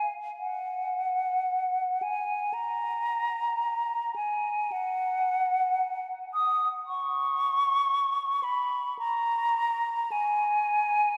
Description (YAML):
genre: classical, free, expressive piece for unaccompanied flute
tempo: 55 BPM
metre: 4/4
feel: rubato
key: G# minor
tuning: A4 = 440 Hz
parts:
  - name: mellow hollow silver concert flute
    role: solo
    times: 0.0-11.2 s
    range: F#5 to D#6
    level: -28 LUFS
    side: equal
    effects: none
room: wet cathedral reverb, RT60 6.1 s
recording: heard from further back in the room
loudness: -28 LUFS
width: mono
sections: 0.0-11.2 A section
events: none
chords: none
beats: | 0.39 1.48 2.55 3.62 | 4.70 5.77 6.87 7.92 | 9.00 10.14